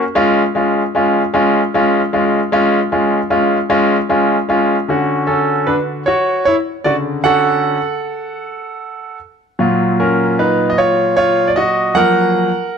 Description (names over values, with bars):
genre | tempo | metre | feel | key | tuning
pop | 51 BPM (dotted quarters) | 6/8 | straight | unclear | A4 = 440 Hz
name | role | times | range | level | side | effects
bright grand piano | solo | 0.0-12.8 s | A#2 to F#5 | -13 LUFS | equal | none
room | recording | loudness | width
light reverb | dark, warm production | -12 LUFS | side -6 dB against mid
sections
0.0-4.9 A section; 4.9-12.8 B section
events
grand piano solo 4.9-12.8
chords
0.1 C#; 4.9 Dmaj7; 9.6 F#maj7